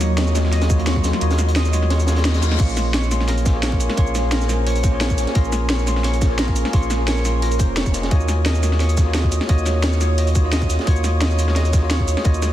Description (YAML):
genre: liquid drum and bass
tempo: 174 BPM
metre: 4/4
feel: swing 53% on 16ths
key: unclear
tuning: A4 = 440 Hz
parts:
  - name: bell-like tine electric piano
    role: accompaniment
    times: 0.0-12.5 s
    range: Bb3 to C6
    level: -26 LUFS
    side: equal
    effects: fast stereo tremolo, ping-pong delay
  - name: ethereal airy pad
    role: sustained chords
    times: 0.0-12.5 s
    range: Gb3 to Eb6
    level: -28 LUFS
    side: equal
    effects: ensemble chorus, built-in reverb, sidechain pumping
  - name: concert harp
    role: arpeggios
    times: 0.0-12.5 s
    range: Bb4 to Eb5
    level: -30 LUFS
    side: right 1 dB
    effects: tape echo
  - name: warm sub bass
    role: bass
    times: 0.0-12.5 s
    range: F1 to Eb2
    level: -19 LUFS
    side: equal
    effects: tube saturation
  - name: crunchy breakbeat drum kit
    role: drums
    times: 0.0-12.5 s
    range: hi-hat, snare drum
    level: -30 LUFS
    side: equal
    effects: high-pass filter on hats, studio reverb, high-pass filter on snare, high-pass filter on room
  - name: drum and bass drum kit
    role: drums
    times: 0.0-12.5 s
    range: crash cymbal, hi-hat, shaker, snare drum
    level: -25 LUFS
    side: equal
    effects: studio reverb
  - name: electronic kick drum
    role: drums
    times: 0.7-12.3 s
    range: none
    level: -18 LUFS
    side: equal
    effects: studio reverb
  - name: reverse cymbal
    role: sound effects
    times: 2.1-2.6 s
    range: none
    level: -32 LUFS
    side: left 7 dB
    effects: none
room: light reverb, small room ambience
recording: dense, heavily limited modern master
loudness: -16 LUFS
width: side -13 dB against mid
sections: 0.0-12.5 A section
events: kick drops out 1.2-2.6; reverse cymbal 2.1-2.6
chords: 0.0 Ebm7; 2.6 Bbm7; 8.1 Ebm7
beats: 0.18 0.53 0.87 | 1.22 1.56 1.91 2.25 | 2.60 2.94 3.29 3.63 | 3.98 4.32 4.67 5.01 | 5.36 5.70 6.04 6.39 | 6.73 7.08 7.42 7.77 | 8.11 8.46 8.80 9.15 | 9.49 9.84 10.18 10.53 | 10.87 11.22 11.56 11.91 | 12.25